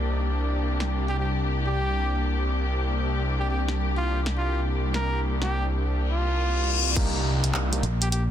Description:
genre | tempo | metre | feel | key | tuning
glitch hop | 104 BPM | 4/4 | swing 63% on 16ths | C minor | A4 = 440 Hz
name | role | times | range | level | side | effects
muted studio string section | sustained chords | 0.0-8.3 s | Bb3 to G4 | -31 LUFS | left 4 dB | sidechain pumping, low-pass filter
phased detuned saw bass | bass | 0.0-7.8 s | C2 | -25 LUFS | equal | phaser, overdrive
drum and bass drum kit | drums | 0.8-8.3 s | crash cymbal, handclaps, hi-hat, snare drum | -29 LUFS | equal | soft clipping on snare
warm trumpet | melody | 1.1-8.2 s | F4 to Bb4 | -32 LUFS | right 1 dB | digital delay
reverse cymbal and downlifter | sound effects | 6.1-8.3 s | none | -30 LUFS | left 4 dB | none
mellow clav | stabs | 7.0-7.8 s | Bb3 to G4 | -33 LUFS | right 1 dB | sidechain pumping, digital delay
electronic kick drum | drums | 7.0-7.1 s | none | -25 LUFS | equal | none
fingered electric bass | bass | 7.8-8.3 s | Bb1 | -24 LUFS | equal | none
room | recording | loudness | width
light reverb | dense, heavily limited modern master | -23 LUFS | side -10 dB against mid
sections
0.0-7.0 A section; 7.0-8.3 B section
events
reverse cymbal 6.1-7.0; drop 7.0-8.3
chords
0.0 C7sus2; 7.0 Cm9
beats
| 0.04 0.62 1.20 1.77 | 2.35 2.93 3.50 4.08 | 4.66 5.24 5.81 6.39 | 6.97 7.54 8.12

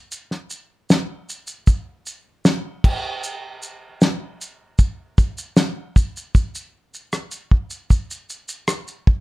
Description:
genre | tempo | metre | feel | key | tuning
pop | 77 BPM | 4/4 | straight | none | none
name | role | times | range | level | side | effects
cloth-damped thuddy drum kit | drums | 0.1-9.2 s | crash cymbal, kick drum, rim click, shaker, snare drum | -17 LUFS | equal | none
room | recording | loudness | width
light reverb | none | -19 LUFS | side -20 dB against mid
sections
0.0-6.3 A section; 6.3-9.2 B section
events
none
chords
none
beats
| 0.12 0.90 1.67 2.45 | 3.23 4.01 4.79 5.57 | 6.34 7.12 7.90 8.68

